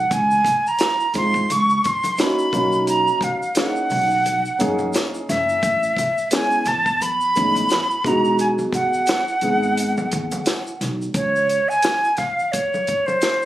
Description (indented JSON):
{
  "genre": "hip hop, jazz-hop",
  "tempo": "87 BPM",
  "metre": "4/4",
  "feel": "swing 58% on 16ths",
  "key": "unclear",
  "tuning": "A4 = 443 Hz",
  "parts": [
    { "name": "silver concert flute", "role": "melody", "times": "0.0-13.5 s", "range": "C5 to Db6", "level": "-19 LUFS", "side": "right 1 dB", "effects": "none" },
    { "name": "upright bass", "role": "bass", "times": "0.0-11.6 s", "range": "E1 to Ab2", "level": "-26 LUFS", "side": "equal", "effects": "none" },
    { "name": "compact cocktail drum kit", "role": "drums", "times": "0.1-13.4 s", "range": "hi-hat, kick drum, snare drum", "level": "-24 LUFS", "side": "equal", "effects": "none" },
    { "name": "tube shaker and congas", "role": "percussion", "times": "0.1-13.5 s", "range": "none", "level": "-34 LUFS", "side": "left 2 dB", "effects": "none" },
    { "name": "dark baby grand piano", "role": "accompaniment", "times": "1.1-10.4 s", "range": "Ab3 to Ab4", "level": "-23 LUFS", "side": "equal", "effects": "none" }
  ],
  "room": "light reverb",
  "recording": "recorded on a phone in the room, club reverb, compression",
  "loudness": "-17 LUFS",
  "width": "side -14 dB against mid",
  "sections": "0.0-11.1 A section; 11.1-13.5 B section",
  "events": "flute solo 11.1-13.5",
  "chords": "0.1 Dbmaj9; 2.5 Cbmaj9; 5.6 Amaj9; 8.0 Emaj9; 11.1 Db5"
}